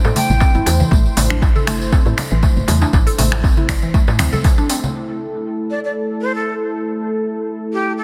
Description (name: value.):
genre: afro house.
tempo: 119 BPM.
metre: 4/4.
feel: swing 54% on 16ths.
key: A minor pentatonic.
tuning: A4 = 437 Hz.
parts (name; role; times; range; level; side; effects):
warm analog pad; sustained chords; 0.0-8.0 s; A3 to C5; -27 LUFS; equal; chorus, sidechain pumping.
mallet-like synth pluck; arpeggios; 0.0-4.8 s; E3 to A4; -26 LUFS; equal; analog chorus, sidechain pumping, dub echo.
woody FM bass; bass; 0.0-4.3 s; G1 to A2; -20 LUFS; equal; sidechain pumping.
congas; percussion; 0.0-4.9 s; none; -27 LUFS; equal; none.
darbuka; percussion; 0.0-4.8 s; none; -29 LUFS; equal; none.
tambourine; percussion; 0.1-4.9 s; none; -32 LUFS; equal; none.
breathy jazz flute; melody; 0.2-0.7, 5.7-8.0 s; G4 to G5; -26 LUFS; equal; dub echo.
afro-pop drum kit; drums; 0.2-4.8 s; finger snaps, hi-hat, toms; -26 LUFS; equal; low-pass filter on hats, low-pass filter on toms, soft clipping on snare, low-pass filter on snare.
electronic kick drum; drums; 0.4-4.6 s; none; -16 LUFS; equal; none.
room: light reverb, studio reverb.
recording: dense, heavily limited modern master.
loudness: -17 LUFS.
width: mono.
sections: 0.0-5.0 A section; 5.0-8.0 B section.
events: none.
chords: 0.0 Am7; 5.0 A5.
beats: 0.41 | 0.92 1.42 1.93 2.43 | 2.93 3.44 3.94 4.45 | 4.95 5.45 5.96 6.46 | 6.97 7.47 7.97.